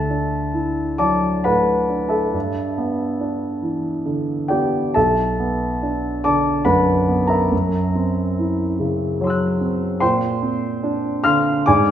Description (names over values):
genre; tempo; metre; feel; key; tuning
classical, impressionist solo piano; 70 BPM; 3/4; uneven beats, rubato; unclear; A4 = 436 Hz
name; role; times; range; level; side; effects
warm concert grand piano; solo; 0.0-11.9 s; B1 to F#6; -17 LUFS; equal; none
room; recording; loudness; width
wet recital hall reverb, RT60 1.6 s; minimal, uncompressed stereo recording; -17 LUFS; side -10 dB against mid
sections
0.0-11.9 A section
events
none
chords
0.0 Dadd9; 2.3 G69; 5.0 Bm7; 7.5 F#7#11; 10.0 Bbadd9